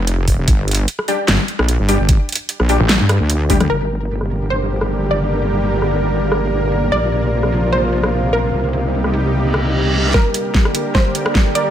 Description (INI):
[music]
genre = heavy wobble dubstep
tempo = 149 BPM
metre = 4/4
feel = swing 54% on 16ths, half-time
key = G minor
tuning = A4 = 444 Hz
[part]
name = wobble bass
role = bass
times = 0.0-10.1 s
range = F1 to G2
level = -18 LUFS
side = equal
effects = chorus, overdrive
[part]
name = dubstep drum kit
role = drums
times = 0.1-11.6 s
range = handclaps, hi-hat, rim click, snare drum, toms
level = -19 LUFS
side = equal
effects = low-pass filter on hats, studio reverb, low-pass filter on snare, low-pass filter on toms
[part]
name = electronic kick drum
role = drums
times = 0.3-3.6, 10.1-11.4 s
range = none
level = -15 LUFS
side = equal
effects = studio reverb
[part]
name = orchestra-hit-like synth stab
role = stabs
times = 1.1-3.6 s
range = G3 to G4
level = -22 LUFS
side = left 2 dB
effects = built-in reverb, ping-pong delay
[part]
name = snarling distorted saw bass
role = bass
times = 1.3-3.0 s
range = G1 to A1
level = -16 LUFS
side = equal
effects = distortion, overdrive
[part]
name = wide unison pluck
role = melody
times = 3.7-11.7 s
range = Bb4 to D5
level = -22 LUFS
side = right 1 dB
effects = ping-pong delay
[part]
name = supersaw pad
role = sustained chords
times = 3.7-11.7 s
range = C3 to Bb4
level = -21 LUFS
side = equal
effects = sidechain pumping
[part]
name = warbly tape-like pad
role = texture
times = 4.6-11.7 s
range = C4 to Bb5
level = -24 LUFS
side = equal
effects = chorus, built-in reverb, sidechain pumping
[part]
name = reverse cymbal and riser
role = sound effects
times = 9.5-11.7 s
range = none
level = -24 LUFS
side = right 2 dB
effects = none
[sound]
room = light reverb, digital ambience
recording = none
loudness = -14 LUFS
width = side -10 dB against mid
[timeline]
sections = 0.0-3.7 A section; 3.7-10.1 B section; 10.1-11.7 C section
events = drop 0.0-3.7; drum fill 3.5, 10.1-11.7; reverse cymbal 9.5-10.1; build-up 10.1-11.7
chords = 0.0 G5; 3.7 Gm; 6.9 Bbsus2; 8.5 Cm7; 10.1 Gm